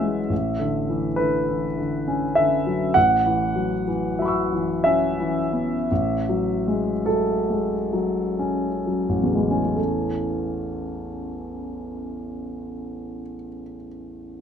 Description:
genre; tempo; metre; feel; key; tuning
classical, impressionist solo piano; 20-34 BPM (dotted quarters); 9/8; rubato; A major; A4 = 440 Hz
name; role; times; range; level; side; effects
warm baby grand piano; solo; 0.0-14.4 s; A1 to E6; -21 LUFS; equal; none
room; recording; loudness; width
light reverb; minimal, uncompressed stereo recording; -20 LUFS; side -8 dB against mid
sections
0.0-9.8 A section; 9.8-14.4 B section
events
slowing down 0.0-9.8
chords
0.3 Bm11/A; 3.0 Aadd9; 5.9 F#madd9/A; 9.8 A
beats
1.19 | 2.95 4.84 7.07 | 9.77 12.26

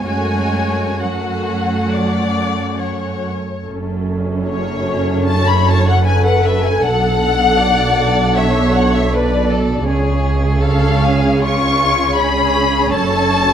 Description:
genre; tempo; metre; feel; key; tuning
classical, slow romantic movement for string orchestra; 64-82 BPM; 4/4; rubato; F# minor; A4 = 439 Hz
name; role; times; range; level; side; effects
muted symphonic violin section; melody; 0.0-13.5 s; C#5 to C#6; -18 LUFS; left 5 dB; none
muted chamber violin section; second line; 0.0-13.5 s; E#4 to D5; -22 LUFS; left 1 dB; none
muted symphonic viola section; accompaniment; 0.0-13.5 s; A3 to C#5; -21 LUFS; equal; none
muted symphonic cello section; bass; 0.0-13.5 s; F#2 to G#3; -20 LUFS; right 2 dB; none
muted symphonic double bass section; bass; 0.0-13.5 s; F#1 to F#2; -19 LUFS; right 2 dB; none
room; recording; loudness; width
light reverb; close, detailed microphones; -13 LUFS; side -9 dB against mid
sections
0.0-3.6 A section; 3.6-13.5 A section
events
none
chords
0.1 F#m; 6.8 Bm7; 9.9 C#; 12.9 F#m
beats
| 0.06 1.00 1.91 2.78 | 3.64 4.46 5.26 6.05 | 6.82 7.59 8.36 9.12 | 9.86 10.61 11.42 12.17 | 12.91

